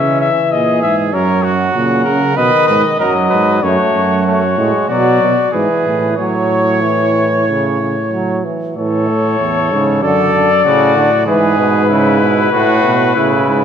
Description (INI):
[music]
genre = classical, imitative canzona for brass ensemble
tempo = 95 BPM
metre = 4/4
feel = straight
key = A major from 3.6 s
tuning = A4 = 441 Hz
[part]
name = mellow cornet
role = melody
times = 0.0-13.6 s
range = B4 to F#5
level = -16 LUFS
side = left 7 dB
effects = none
[part]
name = clear trumpet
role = second line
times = 0.0-13.6 s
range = C#4 to C#5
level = -18 LUFS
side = right 5 dB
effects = none
[part]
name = clear trombone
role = accompaniment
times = 0.0-13.6 s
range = A2 to A3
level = -17 LUFS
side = right 2 dB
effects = none
[part]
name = dark euphonium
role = bass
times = 0.0-13.6 s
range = E2 to C#3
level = -17 LUFS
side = right 2 dB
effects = none
[sound]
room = wet concert hall reverb, RT60 2.2 s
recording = none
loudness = -11 LUFS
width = side -8 dB against mid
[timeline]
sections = 0.0-8.8 A section; 8.8-13.6 B section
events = none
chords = 0.0 C#m; 1.1 F#; 2.4 B; 3.6 F#m; 4.9 Bm; 5.5 E/G#; 6.2 A; 10.0 D/F#; 11.3 E/G#; 12.5 A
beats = 0.52 | 1.14 1.75 2.38 3.00 | 3.63 4.26 4.90 5.54 | 6.18 6.83 7.48 8.12 | 8.77 9.40 10.03 10.65 | 11.27 11.89 12.52 13.16